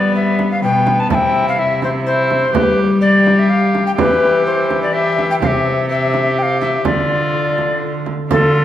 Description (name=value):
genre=classical, renaissance-style consort dance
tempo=125 BPM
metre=3/4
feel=straight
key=D dorian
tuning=A4 = 441 Hz
part: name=mellow tenor recorder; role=melody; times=0.0-8.6 s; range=A4 to A5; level=-16 LUFS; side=left 2 dB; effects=none
part: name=concert harp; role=accompaniment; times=0.0-8.6 s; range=B2 to C5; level=-22 LUFS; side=left 5 dB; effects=none
part: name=warm viola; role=accompaniment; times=0.0-8.6 s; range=B3 to G4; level=-21 LUFS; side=left 1 dB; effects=none
part: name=rich cello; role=bass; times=0.0-8.6 s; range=B2 to G3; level=-20 LUFS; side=right 1 dB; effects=none
part: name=frame drum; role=percussion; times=0.4-8.5 s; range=none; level=-23 LUFS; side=right 5 dB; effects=none
room=wet recital hall reverb, RT60 1.6 s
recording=none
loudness=-13 LUFS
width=side -11 dB against mid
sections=0.0-8.3 A section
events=none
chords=0.0 G; 1.1 C; 2.5 G5; 4.0 Em; 5.4 C; 6.9 Dm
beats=0.16 0.64 | 1.11 1.59 2.07 | 2.55 3.02 3.50 | 3.98 4.46 4.93 | 5.41 5.89 6.37 | 6.85 7.34 7.82 | 8.30